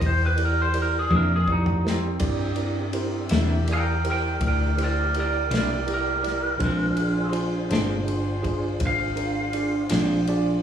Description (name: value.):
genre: slow blues.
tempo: 54 BPM (dotted quarters).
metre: 12/8.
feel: straight.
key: unclear.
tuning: A4 = 440 Hz.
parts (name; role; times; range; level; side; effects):
lightly driven lead guitar; melody; 0.0-10.6 s; C4 to G5; -27 LUFS; right 1 dB; slapback echo, tape echo.
tine electric piano; accompaniment; 0.0-10.6 s; D4 to E5; -28 LUFS; right 3 dB; overdrive, medium stereo tremolo, slapback echo.
tonewheel organ; sustained chords; 0.0-10.6 s; E3 to E5; -34 LUFS; left 1 dB; slow rotary speaker, chorus vibrato.
vintage muted fingered electric bass; bass; 0.0-10.6 s; G1 to G2; -26 LUFS; equal; none.
natural country drum kit; drums; 0.0-10.4 s; crash cymbal, kick drum, ride cymbal, snare drum, toms; -30 LUFS; left 1 dB; none.
electric guitar at the edge of break-up; accompaniment; 1.1-10.1 s; Bb2 to E4; -30 LUFS; left 3 dB; tremolo, slapback echo.
room: light reverb, studio reverb.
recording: live gig heard through the venue's PA, club ambience.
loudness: -21 LUFS.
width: side -9 dB against mid.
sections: 0.0-10.6 A section.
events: lead electric guitar solo 0.0-10.6; drum fill 1.1-2.2.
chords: 0.0 C9; 6.6 Bb9.